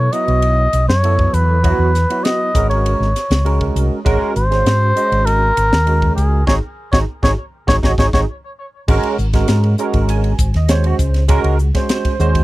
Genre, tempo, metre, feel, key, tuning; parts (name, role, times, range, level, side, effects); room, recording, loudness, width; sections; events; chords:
electric jazz fusion; 99 BPM; 4/4; straight; G# minor; A4 = 441 Hz
trumpet with cup mute; melody; 0.0-8.2 s; G#4 to D#5; -18 LUFS; equal; tape echo
barky tine electric piano; accompaniment; 0.0-12.4 s; F#3 to G#5; -20 LUFS; right 3 dB; ensemble chorus
fingered electric bass; bass; 0.0-12.4 s; G#1 to G#2; -15 LUFS; equal
crisp fusion drum kit; drums; 0.1-12.4 s; crash cymbal, hi-hat, kick drum, ride cymbal, snare drum; -18 LUFS; equal
little or no reverb; dry, close 1970s-style studio recording; -13 LUFS; side -18 dB against mid
0.0-8.9 A section; 8.9-12.4 B section
band accent 6.5-8.9; tine electric piano fill 7.7-8.9
0.0 B7sus4; 2.5 G#9sus4